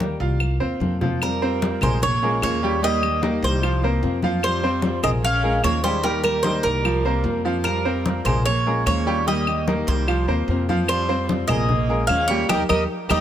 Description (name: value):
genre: latin, Cuban son and guajira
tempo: 149 BPM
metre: 4/4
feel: straight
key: F minor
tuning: A4 = 440 Hz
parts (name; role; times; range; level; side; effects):
- nylon-string guitar; accompaniment; 0.0-13.2 s; C3 to G4; -28 LUFS; left 4 dB; none
- bright grand piano; arpeggios; 0.0-13.2 s; F3 to G5; -26 LUFS; right 1 dB; none
- upright bass; bass; 0.0-13.2 s; Bb1 to F2; -25 LUFS; equal; none
- congas; percussion; 0.0-13.2 s; none; -28 LUFS; left 2 dB; none
- claves; percussion; 0.4-13.2 s; none; -31 LUFS; left 2 dB; none
- Cuban tres; melody; 1.2-13.2 s; G4 to F5; -23 LUFS; right 1 dB; none
- clear viola; second line; 1.2-13.2 s; G3 to Db4; -30 LUFS; right 7 dB; none
room: light reverb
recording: none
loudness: -19 LUFS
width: side -10 dB against mid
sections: 0.0-1.2 A section; 1.2-13.2 B section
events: drum fill 0.8-1.2; band accent 12.5-13.2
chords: 0.4 C7sus4; 1.2 Fsus2; 2.0 Bbm7; 2.8 Eb; 3.6 C7sus4; 4.4 Fsus2; 5.2 Bbm7; 6.0 Eb; 6.9 C7sus4; 7.7 Fsus2; 8.5 Bbm7; 9.3 Eb; 10.1 C7sus4; 10.9 Fsus2; 11.7 Bbm7; 12.5 Eb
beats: 0.00 0.41 0.81 | 1.21 1.62 2.02 2.42 | 2.82 3.23 3.63 4.03 | 4.43 4.84 5.24 5.64 | 6.05 6.45 6.85 7.25 | 7.66 8.06 8.46 8.87 | 9.27 9.67 10.08 10.48 | 10.88 11.29 11.69 12.09 | 12.50 12.90